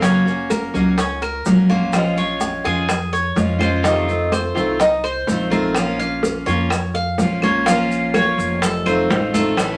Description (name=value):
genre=latin, Cuban son and guajira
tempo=126 BPM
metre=4/4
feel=straight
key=Bb minor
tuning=A4 = 440 Hz
part: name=picked steel-string acoustic guitar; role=accompaniment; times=0.0-9.8 s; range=C3 to Gb4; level=-21 LUFS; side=equal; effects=none
part: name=Cuban tres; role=arpeggios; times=0.0-9.8 s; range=Db4 to F5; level=-24 LUFS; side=equal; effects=none
part: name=upright bass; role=bass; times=0.0-9.8 s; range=F1 to F2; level=-28 LUFS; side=equal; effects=none
part: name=bongos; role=percussion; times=0.0-9.8 s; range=none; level=-27 LUFS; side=equal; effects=none
part: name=congas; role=percussion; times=0.0-9.8 s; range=none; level=-27 LUFS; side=equal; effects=none
part: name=maracas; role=percussion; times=0.0-9.8 s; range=none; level=-37 LUFS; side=equal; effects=none
part: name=claves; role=percussion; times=0.5-9.8 s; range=none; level=-33 LUFS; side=equal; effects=none
room=wet studio reverb, RT60 0.7 s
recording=none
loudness=-19 LUFS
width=mono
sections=0.0-7.7 A section; 7.7-9.8 B section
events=none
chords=0.0 Gb; 1.9 Bbm7; 3.8 F7; 5.8 Bbm; 8.6 F7